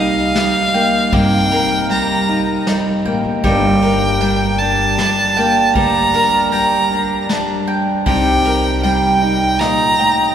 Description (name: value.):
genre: acoustic folk duo or small band.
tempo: 78 BPM.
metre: 3/4.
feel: straight.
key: unclear.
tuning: A4 = 441 Hz.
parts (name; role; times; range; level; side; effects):
warm fiddle; melody; 0.0-10.3 s; F5 to Bb5; -16 LUFS; equal; none.
fingerpicked steel-string acoustic guitar; accompaniment; 0.0-10.3 s; G2 to Bb4; -18 LUFS; equal; none.
mandolin; arpeggios; 0.0-10.3 s; G3 to G5; -20 LUFS; right 2 dB; none.
upright bass; bass; 0.0-9.6 s; G1 to G2; -22 LUFS; left 1 dB; none.
vintage brush drum kit; drums; 0.4-9.8 s; kick drum, ride cymbal, snare drum; -26 LUFS; equal; none.
room: wet cathedral reverb, RT60 4.8 s.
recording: recorded in a church or concert hall.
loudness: -13 LUFS.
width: side -9 dB against mid.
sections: 0.0-10.3 A section.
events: none.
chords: 0.0 Cm7; 3.4 Gm; 8.1 Cm7.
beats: 0.35 | 1.13 1.90 2.67 | 3.44 4.21 4.98 | 5.75 6.53 7.30 | 8.06 8.84 9.61.